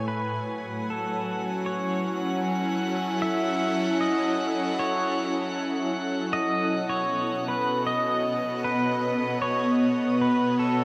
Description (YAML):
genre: ambient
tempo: 77 BPM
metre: 4/4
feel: straight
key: unclear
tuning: A4 = 440 Hz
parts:
  - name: pedal steel guitar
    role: melody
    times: 0.0-10.8 s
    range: A4 to E5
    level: -31 LUFS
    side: equal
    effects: delay
  - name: shimmering ambient pad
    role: sustained chords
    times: 0.0-10.8 s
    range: B2 to G#5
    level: -28 LUFS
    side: equal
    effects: chorus, built-in reverb
  - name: drifting glass-harmonics texture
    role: texture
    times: 0.5-10.8 s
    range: F#5 to F#6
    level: -38 LUFS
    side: equal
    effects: chorus, built-in reverb
room: wet huge ambient reverb, RT60 7.8 s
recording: none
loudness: -26 LUFS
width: mono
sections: 0.0-10.8 A section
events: none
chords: 0.1 F#m7; 6.3 B7